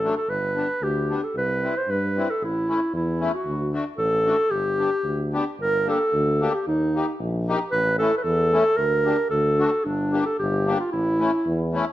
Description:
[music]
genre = alpine folk, alpine dance band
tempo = 113 BPM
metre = 2/4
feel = rubato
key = G major, G minor from 5.6 s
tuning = A4 = 441 Hz
[part]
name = mellow clarinet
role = melody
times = 0.0-11.7 s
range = D4 to C5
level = -22 LUFS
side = equal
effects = none
[part]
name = accordion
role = accompaniment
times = 0.0-11.9 s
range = F#3 to G4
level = -28 LUFS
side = left 3 dB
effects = light tremolo tuning
[part]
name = warm tuba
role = bass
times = 0.0-11.8 s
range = G1 to G2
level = -27 LUFS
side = equal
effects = none
[sound]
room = moderate recital hall reverb, RT60 1.6 s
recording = minimal, uncompressed stereo recording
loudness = -20 LUFS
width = side -14 dB against mid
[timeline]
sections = 0.0-5.6 A section; 5.6-11.9 B section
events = none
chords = 0.3 G; 1.3 C; 2.4 A; 3.5 D; 4.5 G; 5.6 Gm; 6.7 Eb; 7.7 A; 8.8 Gm/D; 9.3 D; 9.8 Gm; 10.9 A

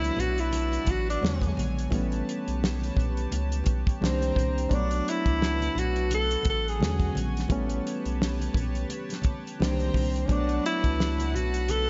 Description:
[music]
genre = R&B, neo-soul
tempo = 86 BPM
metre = 4/4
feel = swing 57% on 16ths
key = B minor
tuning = A4 = 440 Hz
[part]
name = breathy tenor saxophone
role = melody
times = 0.0-11.9 s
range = C4 to A4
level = -32 LUFS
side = equal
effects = slapback echo, tape echo
[part]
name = bright reed electric piano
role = accompaniment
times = 0.0-11.9 s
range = D3 to C#5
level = -35 LUFS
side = equal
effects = slapback echo
[part]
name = chorused pulse-width pad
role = sustained chords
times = 0.0-11.9 s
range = D4 to Bb5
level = -41 LUFS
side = equal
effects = none
[part]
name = round analog bass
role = bass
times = 0.0-11.9 s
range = A1 to E2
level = -32 LUFS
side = equal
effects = none
[part]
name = damped 70s drum kit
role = drums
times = 0.0-11.9 s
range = hi-hat, kick drum, snare drum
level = -32 LUFS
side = equal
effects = none
[part]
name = congas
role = percussion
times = 0.0-11.9 s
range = none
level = -42 LUFS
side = equal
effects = none
[sound]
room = light reverb, studio ambience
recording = nothing above 7.7 kHz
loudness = -27 LUFS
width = mono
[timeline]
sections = 0.0-11.9 A section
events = none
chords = 0.0 Bm7; 1.2 E13; 1.9 A9; 4.0 Cm7; 4.7 Bm7; 6.8 E13; 7.5 A9; 9.6 Cm7; 10.3 Bm7

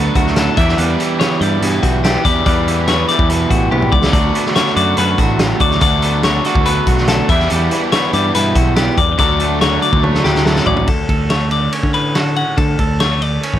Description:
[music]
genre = math rock and midwest emo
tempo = 142 BPM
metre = 4/4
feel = straight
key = D major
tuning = A4 = 440 Hz
[part]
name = clean electric guitar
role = accompaniment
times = 0.0-13.6 s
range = D2 to A4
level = -22 LUFS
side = right 7 dB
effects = none
[part]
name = clean electric guitar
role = arpeggios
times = 0.0-13.6 s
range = F#4 to F#5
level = -18 LUFS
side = left 8 dB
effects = none
[part]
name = overdriven electric guitar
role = riff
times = 0.0-10.9 s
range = D3 to G4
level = -19 LUFS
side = right 1 dB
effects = spring reverb
[part]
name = growling picked electric bass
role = bass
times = 0.0-13.6 s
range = A1 to D3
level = -18 LUFS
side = equal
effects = overdrive
[part]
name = loose indie drum kit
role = drums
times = 0.2-13.6 s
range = hi-hat, kick drum, ride cymbal, snare drum, toms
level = -17 LUFS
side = equal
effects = none
[sound]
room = little or no reverb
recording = none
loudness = -12 LUFS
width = side -11 dB against mid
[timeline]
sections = 0.0-10.9 A section; 10.9-13.6 B section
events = drum fill 3.7-4.1, 10.0-10.9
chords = 0.0 D6; 0.6 Em7; 4.1 D6; 7.3 Em7; 9.2 Dmaj7

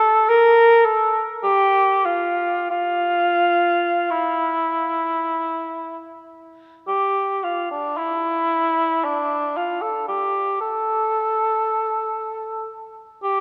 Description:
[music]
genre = classical, free, expressive piece for unaccompanied cor anglais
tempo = 33-59 BPM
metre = 3/4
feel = rubato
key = unclear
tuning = A4 = 440 Hz
[part]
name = dark cor anglais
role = solo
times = 0.0-13.4 s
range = D4 to Bb4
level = -20 LUFS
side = equal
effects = none
[sound]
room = wet church reverb, RT60 3.4 s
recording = worn, warbling old tape, cassette tape, warbly pitch drift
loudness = -20 LUFS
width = mono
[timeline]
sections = 0.0-6.9 A section; 6.9-13.4 B section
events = none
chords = none

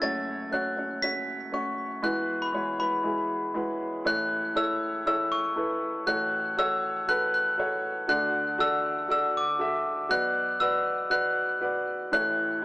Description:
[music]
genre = pop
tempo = 119 BPM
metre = 4/4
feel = straight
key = A major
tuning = A4 = 442 Hz
[part]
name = glockenspiel with hard plastic mallets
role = melody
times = 0.0-12.6 s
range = B5 to B6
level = -27 LUFS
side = left 1 dB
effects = none
[part]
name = warm grand piano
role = accompaniment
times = 0.0-12.6 s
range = F#1 to E5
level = -30 LUFS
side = equal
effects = none
[sound]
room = moderate large studio reverb, RT60 1.1 s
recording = small speaker sound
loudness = -25 LUFS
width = side -20 dB against mid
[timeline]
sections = 0.0-4.1 A section; 4.1-12.6 B section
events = none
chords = 0.0 F#m; 2.0 Eadd9; 4.1 A; 6.1 F#m/A; 8.1 D; 10.1 Bm; 12.1 A

